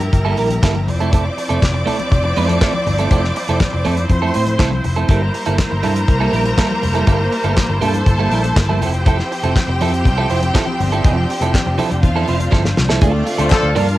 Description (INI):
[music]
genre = disco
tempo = 121 BPM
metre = 4/4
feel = straight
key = unclear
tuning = A4 = 439 Hz
[part]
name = clear studio string section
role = second line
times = 0.0-14.0 s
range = A3 to D6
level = -23 LUFS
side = equal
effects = none
[part]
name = clean electric guitar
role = accompaniment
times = 0.0-13.9 s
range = F3 to C5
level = -21 LUFS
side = right 5 dB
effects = wide subtle chorus
[part]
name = clear studio string section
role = sustained chords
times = 0.0-14.0 s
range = D3 to A5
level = -23 LUFS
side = equal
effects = none
[part]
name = fingered electric bass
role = bass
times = 0.0-14.0 s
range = F1 to A2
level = -18 LUFS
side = equal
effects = none
[part]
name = damped 70s drum kit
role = drums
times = 0.0-14.0 s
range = handclaps, hi-hat, kick drum, snare drum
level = -17 LUFS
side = equal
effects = cassette tape
[part]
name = congas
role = percussion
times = 0.0-13.9 s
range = none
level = -28 LUFS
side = left 6 dB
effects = none
[part]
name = warm horn section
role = stabs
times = 13.4-13.7 s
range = F3 to C5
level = -18 LUFS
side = left 1 dB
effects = none
[part]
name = group handclap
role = percussion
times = 13.5-13.6 s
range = none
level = -27 LUFS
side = left 9 dB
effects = none
[sound]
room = light reverb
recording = home recording on cassette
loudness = -14 LUFS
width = side -16 dB against mid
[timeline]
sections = 0.0-13.0 A section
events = drum fill 12.5-13.0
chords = 0.0 Gm69; 0.9 Fmaj7; 5.1 Gm69; 8.8 Fmaj7; 13.0 Dm7